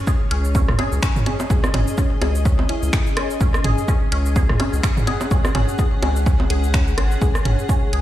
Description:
minimal techno; 126 BPM; 4/4; swing 57% on 16ths; A4 = 441 Hz
granular cloud pad; texture; 0.0-8.0 s; C#4 to F#5; -28 LUFS; left 2 dB; built-in reverb, sidechain pumping
resonant blip pluck; riff; 0.1-8.0 s; C#4 to G#4; -28 LUFS; left 1 dB; phaser, wide subtle chorus, sidechain pumping, dub echo
electronic kick drum; drums; 0.1-7.8 s; -20 LUFS; equal
garage drum kit; drums; 0.1-8.0 s; cabasa, finger snaps, hi-hat; -29 LUFS; equal; overdrive
round analog bass; bass; 0.3-8.0 s; G#1 to C#2; -20 LUFS; equal; sidechain pumping
garage drum kit; percussion; 0.5-7.6 s; bongos, rim click, toms; -24 LUFS; right 1 dB; ping-pong delay
bell-like FM electric piano; melody; 2.7-3.1 s; E4; -33 LUFS; equal; chorus, tremolo, ping-pong delay
light reverb, digital ambience; played on a big sound system in a bare room, stone room reverb; -16 LUFS; side -13 dB against mid
0.0-8.0 A section
0.0 C#5

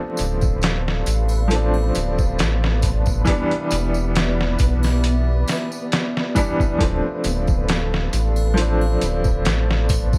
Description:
trip hop; 68 BPM; 4/4; swing 54% on 16ths; D dorian; A4 = 440 Hz
clear upright piano; accompaniment; 0.0-10.2 s; E3 to D4; -27 LUFS; equal; tremolo, tape echo
warbly tape-like pad; sustained chords; 0.0-10.2 s; C3 to F5; -32 LUFS; equal; chorus, built-in reverb
flickering grainy texture; texture; 0.5-10.2 s; B3 to B4; -36 LUFS; equal; built-in reverb
round analog bass; bass; 0.2-10.2 s; D1 to B1; -23 LUFS; equal; tube saturation
trip hop sampler-style drum kit; drums; 0.2-10.2 s; hi-hat, kick drum, snare drum; -24 LUFS; equal; studio reverb
tambourine and triangle; percussion; 0.2-10.2 s; -38 LUFS; equal
little or no reverb; vinyl crackle; -20 LUFS; mono
0.0-10.2 A section
0.0 Dm7; 3.3 Em7; 6.8 Dm7

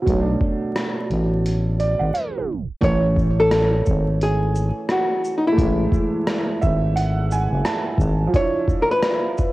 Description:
lo-fi hip hop; 87 BPM; 4/4; swing 59% on 16ths; A major; A4 = 443 Hz
warm upright piano; accompaniment; 0.0-9.5 s; B2 to C#6; -24 LUFS; right 3 dB; cassette tape
growling FM bass; bass; 0.1-8.3 s; F#1 to B1; -20 LUFS; equal; transformer saturation
boom bap sampler-style drum kit; drums; 0.1-9.5 s; hi-hat, kick drum, rim click, shaker, snare drum; -23 LUFS; equal; cassette tape
archtop guitar, miked and amplified; melody; 2.8-9.5 s; D#4 to C#5; -21 LUFS; left 1 dB; cassette tape, tape echo
light reverb; home recording on cassette, vinyl crackle, tape stop; -18 LUFS; side -18 dB against mid
0.0-2.8 A section; 2.8-9.5 B section
drum fill 2.1-2.8; tape stop 2.1-2.8
0.1 Bm7; 2.8 Amaj7; 8.3 Dmadd9

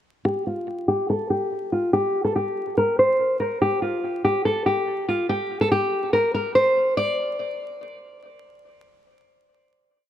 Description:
hip hop, drill; 143 BPM; 4/4; half-time; A4 = 439 Hz
nylon-string guitar; solo; 0.3-8.2 s; F4 to D5; -20 LUFS; equal; low-pass filter, tape echo
moderate plate reverb, RT60 2.8 s; vinyl crackle; -20 LUFS; side -11 dB against mid
0.3-7.0 breakdown; 7.0-10.1 final note
filter sweep on nylon-string guitar 0.3-7.0

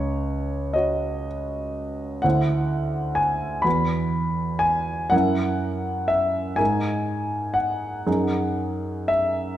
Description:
classical, impressionist solo piano; 38-43 BPM (dotted quarters); 6/8; rubato; A4 = 440 Hz
warm concert grand piano; solo; 0.0-9.6 s; C#2 to B5; -21 LUFS; equal
moderate recital hall reverb, RT60 1.6 s; -21 LUFS; side -12 dB against mid
0.0-9.6 A section
0.0 F#5/C#; 2.2 D9; 3.7 Esus2; 5.1 F#7; 6.6 G#sus2; 8.1 F#sus2

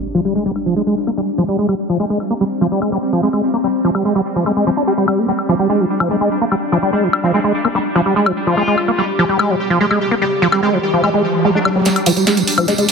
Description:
psychedelic trance; 146 BPM; 4/4; straight; A4 = 440 Hz
pulsing gated texture; sustained chords; 0.0-12.9 s; G3 to G4; -20 LUFS; left 1 dB; chorus, built-in reverb
impact and riser; sound effects; 0.0-0.4, 9.7-12.9 s; -23 LUFS; right 1 dB
liquid acid bass; riff; 0.1-12.9 s; F3 to G4; -16 LUFS; right 1 dB; chorus, auto-pan, tape echo
techno drum kit; drums; 0.6-12.9 s; hi-hat, snare drum, woodblock; -19 LUFS; left 3 dB
metallic wobble bass; second line; 7.2-11.7 s; C4 to F4; -26 LUFS; left 4 dB; chorus, high-pass filter, tape echo
tambourine; percussion; 11.9-12.9 s; -22 LUFS; right 4 dB
moderate plate reverb, RT60 1.2 s, digital ambience; heavily compressed radio sound, multiband compression, low-pass filter; -14 LUFS; side -5 dB against mid
0.0-11.9 A section; 11.9-12.9 B section
impact 0.0-0.4; filter sweep on acid bass 0.0-11.9, 11.9-12.9; filter sweep 0.0-11.9; riser 9.7-11.9, 11.9-12.9; build-up 11.9-12.9; drum fill 11.9-12.9
0.0 G5

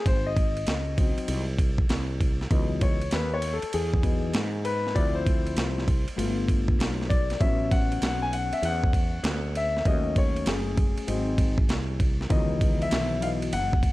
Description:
hip hop, jazz-hop; 98 BPM; 4/4; swing 65% on 16ths; G# phrygian; A4 = 440 Hz
dark baby grand piano; accompaniment; 0.0-13.9 s; D#3 to G#5; -29 LUFS; left 3 dB
woody fretless electric bass; bass; 0.1-13.9 s; F#1 to G#2; -30 LUFS; equal
dusty soul sampler-style drum kit; drums; 0.1-13.9 s; hi-hat, kick drum, ride cymbal, snare drum; -26 LUFS; equal; overdrive
little or no reverb; dark, warm production; -23 LUFS; side -18 dB against mid
0.0-13.9 A section
grand piano solo 0.0-13.9
0.1 G#7; 2.5 C#m11; 5.0 Dm7; 6.2 G9; 7.4 A69; 9.9 D#m7b5; 11.1 G#7; 12.3 C#m11

